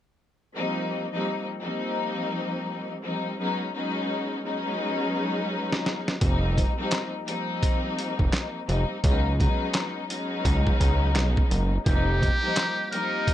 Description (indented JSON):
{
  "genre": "hip hop, boom-bap hip-hop",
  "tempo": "85 BPM",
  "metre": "4/4",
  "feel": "swing 61% on 16ths",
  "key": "unclear",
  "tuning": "A4 = 440 Hz",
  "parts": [
    { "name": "warm symphonic string section", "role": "accompaniment", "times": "0.6-13.3 s", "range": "F3 to Eb4", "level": "-28 LUFS", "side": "left 2 dB", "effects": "high-pass filter, low-pass filter" },
    { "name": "boom bap sampler-style drum kit", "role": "drums", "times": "5.7-13.3 s", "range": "handclaps, hi-hat, kick drum, snare drum", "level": "-25 LUFS", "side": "equal", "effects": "none" },
    { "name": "fat analog bass", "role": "bass", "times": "6.2-12.3 s", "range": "F1 to Db2", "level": "-24 LUFS", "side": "equal", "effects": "none" },
    { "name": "trumpet with metal mute", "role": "melody", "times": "11.9-13.3 s", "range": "G4 to Bb4", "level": "-27 LUFS", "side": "right 2 dB", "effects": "high-pass filter, low-pass filter, tape echo" }
  ],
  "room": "light reverb",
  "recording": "dry, gritty hardware recording",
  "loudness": "-24 LUFS",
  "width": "side -12 dB against mid",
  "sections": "0.6-11.9 A section; 11.9-13.3 B section",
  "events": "drum fill 4.8-6.2",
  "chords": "0.6 F9sus4; 3.4 Db9sus4; 6.2 F9sus4; 9.0 Db9sus4; 11.9 F9sus4"
}